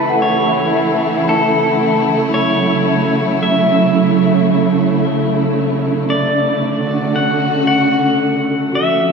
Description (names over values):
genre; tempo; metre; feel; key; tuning
ambient; 56 BPM; 3/4; straight; D major; A4 = 440 Hz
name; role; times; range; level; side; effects
pedal steel guitar; melody; 0.0-9.1 s; A4 to F#5; -18 LUFS; left 1 dB; ping-pong delay
muted studio string section; sustained chords; 0.0-9.1 s; C#3 to F#4; -14 LUFS; right 2 dB; none
large celesta; arpeggios; 0.0-9.1 s; C#4 to A5; -21 LUFS; left 2 dB; ping-pong delay
room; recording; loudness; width
wet cathedral reverb, RT60 5.5 s; none; -12 LUFS; side -5 dB against mid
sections
0.0-9.1 A section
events
none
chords
0.0 F#m7; 5.5 Dmaj7